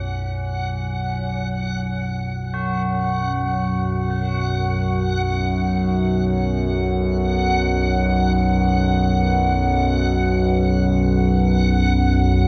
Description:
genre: dark ambient drone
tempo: free time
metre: none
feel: none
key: unclear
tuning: A4 = 440 Hz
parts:
  - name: tubular bells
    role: arpeggios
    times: 0.0-12.5 s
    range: C#4 to F#4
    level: -34 LUFS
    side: equal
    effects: tape echo
  - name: analog drone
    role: drone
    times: 0.0-12.5 s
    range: B1 to F#2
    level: -21 LUFS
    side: equal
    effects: chorus
  - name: backwards swelling texture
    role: texture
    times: 0.0-12.5 s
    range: F#5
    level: -29 LUFS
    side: equal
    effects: built-in reverb
room: wet plate reverb, RT60 3.5 s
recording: echo-heavy mix, nothing above 7.5 kHz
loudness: -20 LUFS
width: mono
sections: 0.0-12.5 A section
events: fade-in on synth drone 0.0-12.5; fade-in on synth texture 0.0-12.5; fade-in on tubular bells 0.0-12.5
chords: 0.0 Bsus2

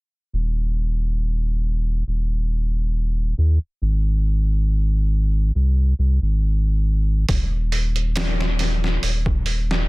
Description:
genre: trip hop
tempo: 69 BPM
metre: 4/4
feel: swing 54% on 16ths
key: unclear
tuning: A4 = 440 Hz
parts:
  - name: warm sub bass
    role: bass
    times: 0.3-9.9 s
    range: Eb1 to Eb2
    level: -19 LUFS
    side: equal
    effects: none
  - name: trip hop sampler-style drum kit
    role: drums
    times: 7.3-9.9 s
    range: hi-hat, kick drum, snare drum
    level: -23 LUFS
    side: equal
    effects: overdrive
room: little or no reverb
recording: dense, heavily limited modern master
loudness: -19 LUFS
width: side -23 dB against mid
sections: 0.3-9.9 A section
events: none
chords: none

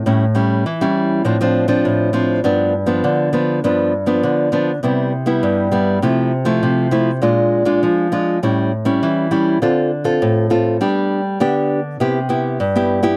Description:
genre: samba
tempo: 100 BPM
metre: 4/4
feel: straight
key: C major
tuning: A4 = 440 Hz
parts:
  - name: nylon-string guitar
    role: solo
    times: 0.0-13.2 s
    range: G2 to A4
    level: -17 LUFS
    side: equal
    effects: none
room: little or no reverb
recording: dry, close 1970s-style studio recording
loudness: -17 LUFS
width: mono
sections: 0.0-13.2 A section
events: none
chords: 0.1 A7; 1.3 Dm7/A; 2.4 G7; 4.8 Cmaj7; 6.0 Fmaj7/C; 7.2 Bb7; 8.4 A7; 9.6 Dm7; 10.8 G; 12.0 Cmaj7

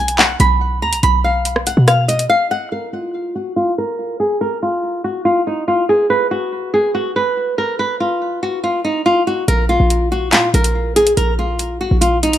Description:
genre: hip hop, drill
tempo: 142 BPM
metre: 4/4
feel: half-time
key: unclear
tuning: A4 = 440 Hz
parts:
  - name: flamenco guitar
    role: melody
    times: 0.0-12.4 s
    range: Eb4 to B5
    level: -16 LUFS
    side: equal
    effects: low-pass filter, digital delay
  - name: short 808-style bass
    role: bass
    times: 0.0-2.3, 9.5-12.4 s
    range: Bb1 to B2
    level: -17 LUFS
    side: equal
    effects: none
  - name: drill drum kit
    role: drums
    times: 0.1-2.3, 9.5-12.4 s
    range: handclaps, hi-hat, rim click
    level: -16 LUFS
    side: equal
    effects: none
room: light reverb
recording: none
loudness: -14 LUFS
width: side -11 dB against mid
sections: 0.0-2.7 A section; 2.7-9.5 B section; 9.5-12.4 C section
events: break 2.3-2.7; filter sweep on nylon-string guitar 2.7-9.5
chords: 0.0 N.C.; 9.5 Bb5

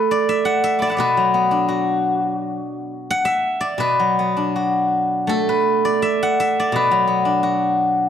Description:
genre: chinese traditional, Chinese solo plucked strings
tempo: 80-89 BPM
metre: 2/4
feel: rubato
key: unclear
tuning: A4 = 441 Hz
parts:
  - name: steel-string zither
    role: solo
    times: 0.0-8.1 s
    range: B2 to D6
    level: -16 LUFS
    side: left 1 dB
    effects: none
room: moderate recital hall reverb, RT60 1.4 s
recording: dark, warm production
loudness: -16 LUFS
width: side -9 dB against mid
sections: 0.0-8.1 A section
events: none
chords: none

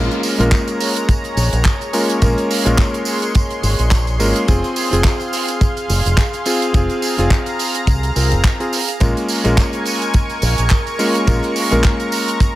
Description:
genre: nu-disco, nu disco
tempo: 106 BPM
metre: 4/4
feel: swing 56% on 16ths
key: Bb minor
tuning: A4 = 440 Hz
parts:
  - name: warm electric grand piano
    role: accompaniment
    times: 0.0-12.6 s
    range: Ab3 to Bb4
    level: -20 LUFS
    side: left 1 dB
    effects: sidechain pumping, digital delay
  - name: lush unison pad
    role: sustained chords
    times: 0.0-12.6 s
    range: Ab4 to Db6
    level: -23 LUFS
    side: equal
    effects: chorus, sidechain pumping
  - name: fingered electric bass with an envelope filter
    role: bass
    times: 0.0-11.8 s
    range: F1 to C2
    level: -17 LUFS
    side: equal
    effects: tube saturation, sidechain pumping
  - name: damped 70s drum kit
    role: drums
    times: 0.1-12.5 s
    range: handclaps, hi-hat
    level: -23 LUFS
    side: right 3 dB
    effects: studio ambience
  - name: tambourine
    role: percussion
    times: 0.1-12.5 s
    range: none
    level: -29 LUFS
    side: right 4 dB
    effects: none
  - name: kick drum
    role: drums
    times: 0.5-12.5 s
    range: none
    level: -15 LUFS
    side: equal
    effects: studio ambience
room: little or no reverb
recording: none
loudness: -14 LUFS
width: side -16 dB against mid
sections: 0.0-12.6 A section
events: none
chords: 0.0 Bbm7; 4.5 Fm; 9.0 Bbm7

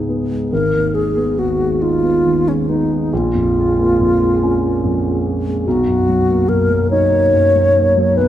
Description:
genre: classical, impressionist duo for alto flute and grand piano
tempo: 47 BPM (dotted quarters)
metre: 6/8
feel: rubato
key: unclear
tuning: A4 = 441 Hz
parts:
  - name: mellow wooden-headed alto flute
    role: melody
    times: 0.0-8.3 s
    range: Db4 to Db5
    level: -16 LUFS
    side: left 1 dB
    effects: none
  - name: dark concert grand piano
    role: accompaniment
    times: 0.0-8.3 s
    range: Ab1 to Eb4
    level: -16 LUFS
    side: equal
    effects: none
room: moderate scoring stage reverb, RT60 2.0 s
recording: none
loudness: -13 LUFS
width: side -11 dB against mid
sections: 0.0-8.3 A section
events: none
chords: 0.0 Dbsus2; 0.5 Abm; 3.1 Bbm7; 5.7 Bmaj7

